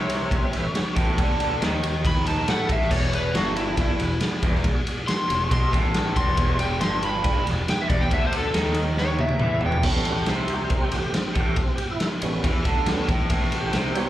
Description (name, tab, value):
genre	blues rock power trio and southern rock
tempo	139 BPM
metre	4/4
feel	straight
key	unclear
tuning	A4 = 440 Hz
part	overdriven slide guitar	melody	0.0-9.9 s	E4 to C6	-28 LUFS	left 1 dB	slapback echo
part	tonewheel organ	sustained chords	0.0-14.1 s	G3 to E5	-33 LUFS	right 3 dB	slow rotary speaker, overdrive, chorus vibrato
part	raw garage guitar	riff	0.0-14.1 s	E2 to A3	-28 LUFS	right 1 dB	overdrive, slapback echo
part	fuzz fingered electric bass	bass	0.0-14.1 s	E1 to A2	-28 LUFS	equal	overdrive
part	raw garage drum kit	drums	0.1-14.1 s	crash cymbal, kick drum, ride cymbal, snare drum, toms	-24 LUFS	equal	none
room	studio ambience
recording	live gig heard through the venue's PA, club reverb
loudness	-20 LUFS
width	side -13 dB against mid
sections	0.0-9.8 A section; 9.8-14.1 A section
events	electric slide guitar solo 0.0-9.8; drum fill 9.0-9.8; tonewheel organ solo 9.8-14.1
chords	0.0 A7; 2.9 E7; 8.1 A7; 9.0 E7; 9.8 A7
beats	0.31 0.74 | 1.18 1.61 2.05 2.48 | 2.91 3.35 3.78 4.21 | 4.65 5.08 5.51 5.95 | 6.38 6.82 7.25 7.68 | 8.11 8.55 8.98 9.41 | 9.84 10.28 10.71 11.14 | 11.57 12.01 12.44 12.87 | 13.30 13.74